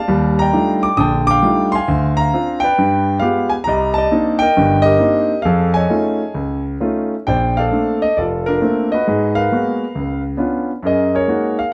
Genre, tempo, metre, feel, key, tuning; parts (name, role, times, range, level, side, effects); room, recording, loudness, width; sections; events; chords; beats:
solo jazz; 134 BPM; 4/4; swing 67% on 8ths, rubato; Bb major; A4 = 441 Hz
warm concert grand piano; solo; 0.0-11.7 s; F1 to Eb6; -16 LUFS; equal
moderate studio reverb, RT60 0.8 s; band playing live in one room; -16 LUFS; mono
0.0-7.3 A section; 7.3-11.7 B section
0.1 Ebmaj9#11; 1.9 Dm7b5; 2.8 G7b9; 3.7 Cm9; 5.5 F7alt; 7.3 Bbmaj9; 9.1 Abm9; 10.0 Db7b9; 10.8 Gb69
| 0.10 0.55 1.00 1.45 | 1.90 2.35 2.80 3.24 | 3.68 4.12 4.57 5.01 | 5.45 5.90 6.35 6.81 | 7.27 7.72 8.18 8.63 | 9.07 9.52 9.96 10.40 | 10.84 11.29